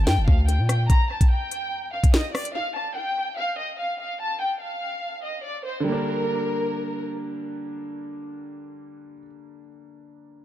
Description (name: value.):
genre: hip hop, drill.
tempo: 145 BPM.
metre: 4/4.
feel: half-time.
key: G minor.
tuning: A4 = 440 Hz.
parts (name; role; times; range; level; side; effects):
warm studio violin section; melody; 0.0-7.1 s; Bb4 to Bb5; -28 LUFS; left 1 dB; low-pass filter, tape echo.
hard-hitting 808-style bass; bass; 0.0-0.9 s; G1 to Bb2; -20 LUFS; equal; none.
drill drum kit; drums; 0.1-2.5 s; hi-hat, kick drum, rim click, snare drum; -20 LUFS; equal; none.
clear concert grand piano; accompaniment; 5.8-10.4 s; D3 to D4; -30 LUFS; right 1 dB; low-pass filter, tape echo.
room: light reverb, small room ambience.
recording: echo-heavy mix.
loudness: -22 LUFS.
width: side -13 dB against mid.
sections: 0.0-5.9 A section; 5.9-9.2 B section.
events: break 0.0-5.9.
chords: 0.0 Gm; 2.6 N.C.; 5.9 Gm.